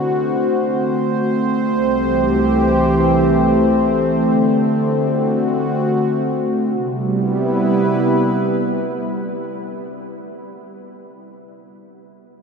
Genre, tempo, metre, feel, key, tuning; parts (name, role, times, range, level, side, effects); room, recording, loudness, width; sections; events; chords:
ambient; free time; C lydian; A4 = 439 Hz
warm analog pad; sustained chords; 0.0-10.0 s; C2 to C5; -16 LUFS; equal; chorus
wet huge ambient reverb, RT60 7.9 s; in a vast, echoing space; -15 LUFS; side -5 dB against mid
0.0-6.7 A section; 6.7-9.2 B section
0.0 D7; 1.7 Am7/C; 4.2 D7; 6.7 Cmaj7